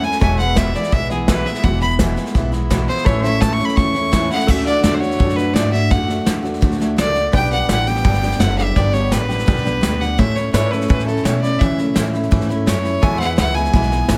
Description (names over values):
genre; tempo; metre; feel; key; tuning
honky-tonk and classic country; 169 BPM; 4/4; straight; A major; A4 = 440 Hz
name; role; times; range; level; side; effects
clear fiddle; second line; 0.0-14.2 s; G#4 to C#6; -23 LUFS; equal; none
picked steel-string acoustic guitar; accompaniment; 0.0-14.2 s; E2 to G4; -24 LUFS; equal; none
pedal steel guitar; sustained chords; 0.0-14.2 s; D4 to G5; -30 LUFS; equal; none
soft brush drum kit; drums; 0.0-14.2 s; crash cymbal, hi-hat, kick drum, snare drum; -22 LUFS; equal; none
upright bass; bass; 0.2-14.2 s; E1 to C#3; -24 LUFS; equal; none
room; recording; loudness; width
light reverb; none; -17 LUFS; mono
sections
0.0-4.5 A section; 4.5-14.2 B section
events
fiddle solo 0.0-4.5, 4.5-14.2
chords
0.2 E; 3.1 A; 4.5 D; 7.3 G; 10.2 A; 13.0 E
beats
| 0.21 0.57 0.92 1.28 | 1.64 1.99 2.35 2.70 | 3.06 3.42 3.77 4.13 | 4.48 4.84 5.20 5.55 | 5.91 6.26 6.62 6.98 | 7.33 7.69 8.04 8.40 | 8.76 9.11 9.47 9.82 | 10.18 10.54 10.89 11.25 | 11.60 11.96 12.31 12.67 | 13.02 13.38 13.73 14.09